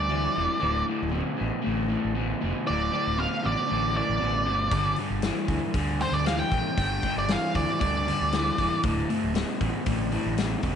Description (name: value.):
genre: blues rock power trio and southern rock.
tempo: 117 BPM.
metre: 4/4.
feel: straight.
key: unclear.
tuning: A4 = 440 Hz.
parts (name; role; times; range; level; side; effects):
octave-fuzz lead guitar; melody; 0.0-8.8 s; C5 to G5; -27 LUFS; right 1 dB; distortion, slapback echo.
crunchy overdriven guitar; riff; 0.0-10.8 s; D2 to E3; -28 LUFS; left 1 dB; none.
fuzz fingered electric bass; bass; 0.0-10.7 s; D1 to D2; -30 LUFS; right 1 dB; overdrive.
big rock drum kit; drums; 4.7-10.8 s; hi-hat, kick drum, snare drum; -30 LUFS; left 2 dB; none.
room: light reverb, studio reverb.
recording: 1960s-style stereo, nothing above 10.8 kHz.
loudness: -24 LUFS.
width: side -8 dB against mid.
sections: 0.0-10.8 A section.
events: none.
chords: 0.0 G5; 0.6 D5; 4.7 G5; 8.8 D5.